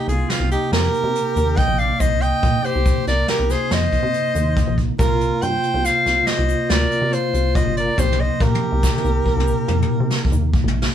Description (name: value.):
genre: progressive instrumental, band music in an uneven meter.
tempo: 141 BPM.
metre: 7/4.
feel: straight.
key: C minor.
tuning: A4 = 439 Hz.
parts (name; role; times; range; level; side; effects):
clear soprano saxophone; melody; 0.0-10.5 s; F4 to G5; -21 LUFS; equal; none.
clear flugelhorn; second line; 0.0-10.5 s; C4 to Eb5; -29 LUFS; left 3 dB; none.
mellow tonewheel organ; accompaniment; 0.0-10.9 s; C3 to F4; -25 LUFS; right 3 dB; chorus vibrato, fast rotary speaker.
plucky analog bass; bass; 0.1-10.9 s; G1 to C3; -22 LUFS; equal; none.
jazz brush drum kit; drums; 0.1-10.9 s; hi-hat, kick drum, snare drum, toms; -22 LUFS; left 1 dB; none.
egg shaker; percussion; 0.1-10.6 s; none; -40 LUFS; left 4 dB; none.
room: moderate studio ambience, RT60 0.5 s.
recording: band playing live in one room.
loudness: -16 LUFS.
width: side -10 dB against mid.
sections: 0.0-10.9 A section.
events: drum fill 8.0-10.9.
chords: 0.0 Cm7; 5.0 Bbsus2/C; 8.0 Cm7.